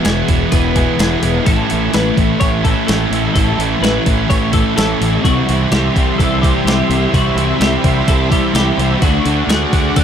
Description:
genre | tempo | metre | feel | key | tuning
rock, shoegaze and dream pop | 127 BPM | 4/4 | straight | unclear | A4 = 440 Hz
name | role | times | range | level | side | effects
twelve-string electric guitar | arpeggios | 0.0-10.0 s | F#4 to C#5 | -22 LUFS | left 3 dB | ensemble chorus, digital delay
overdriven electric guitar | riff | 0.0-10.0 s | A2 to F#4 | -18 LUFS | right 12 dB | reverse reverb
thick fuzz guitar | riff | 0.0-10.0 s | E2 to D4 | -19 LUFS | left 12 dB | distortion, analog chorus
crisp 8-bit digital drum machine | drums | 0.0-10.0 s | hi-hat, kick drum, snare drum | -17 LUFS | equal | overdrive
growling fingered electric bass | bass | 0.1-10.0 s | E1 to D2 | -19 LUFS | equal | overdrive
analog string pad | sustained chords | 5.5-10.0 s | E4 to D6 | -23 LUFS | equal | ensemble chorus
room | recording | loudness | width
light reverb, digital ambience | none | -12 LUFS | side -8 dB against mid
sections
0.0-10.0 A section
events
none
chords
0.0 E; 1.5 Aadd9; 5.2 C; 9.0 D

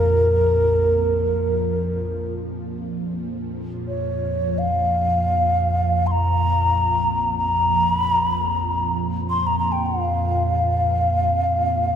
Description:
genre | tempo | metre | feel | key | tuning
world meditative, free-time meditation music | free time | none | none | Bb minor | A4 = 440 Hz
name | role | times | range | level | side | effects
breathy reedy low xiao | melody | 0.0-12.0 s | Bb4 to C6 | -20 LUFS | equal | none
ethereal airy pad | drone | 0.0-12.0 s | Bb1 to F2 | -23 LUFS | equal | ensemble chorus, built-in reverb, phaser
room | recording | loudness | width
wet church reverb, RT60 3.5 s | dark, warm production | -18 LUFS | side -8 dB against mid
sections
0.0-2.7 A section; 2.7-12.0 A section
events
none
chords
none

